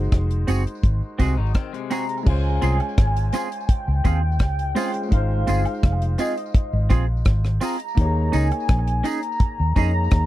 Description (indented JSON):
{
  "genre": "lovers rock reggae",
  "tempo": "84 BPM",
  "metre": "4/4",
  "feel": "straight",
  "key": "Ab major",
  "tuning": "A4 = 440 Hz",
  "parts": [
    { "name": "clear concert grand piano", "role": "accompaniment", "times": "0.0-10.3 s", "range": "Ab3 to Db5", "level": "-31 LUFS", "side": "left 1 dB", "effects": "tape echo" },
    { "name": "vintage muted fingered electric bass", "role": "bass", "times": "0.0-10.3 s", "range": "F1 to F2", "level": "-21 LUFS", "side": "equal", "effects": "none" },
    { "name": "deep reggae drum kit", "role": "drums", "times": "0.1-10.3 s", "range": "crash cymbal, hi-hat, kick drum, rim click", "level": "-18 LUFS", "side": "equal", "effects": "none" },
    { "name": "twangy electric guitar", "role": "stabs", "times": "0.5-9.9 s", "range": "C4 to Ab4", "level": "-24 LUFS", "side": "right 4 dB", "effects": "lush chorus" },
    { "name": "tambourine and woodblock", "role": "percussion", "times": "0.5-9.9 s", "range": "none", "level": "-40 LUFS", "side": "right 3 dB", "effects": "tape echo" },
    { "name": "twangy electric guitar", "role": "arpeggios", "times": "1.2-2.2 s", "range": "C3 to Eb4", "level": "-31 LUFS", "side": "left 10 dB", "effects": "none" },
    { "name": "warm velvety synth lead", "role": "melody", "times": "1.9-10.3 s", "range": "Eb5 to Bb5", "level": "-28 LUFS", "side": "equal", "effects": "chorus, tape echo" }
  ],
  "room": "little or no reverb",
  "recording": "dry, close 1970s-style studio recording",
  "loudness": "-19 LUFS",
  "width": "side -15 dB against mid",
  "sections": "0.0-2.3 A section; 2.3-10.3 B section",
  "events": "none",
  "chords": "0.0 Ab7; 2.3 Dbmaj7; 5.1 Ab6; 8.0 Eb7sus4",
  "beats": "0.12 0.84 1.55 | 2.26 2.98 3.69 4.40 | 5.12 5.83 6.55 7.26 | 7.98 8.69 9.41 10.12"
}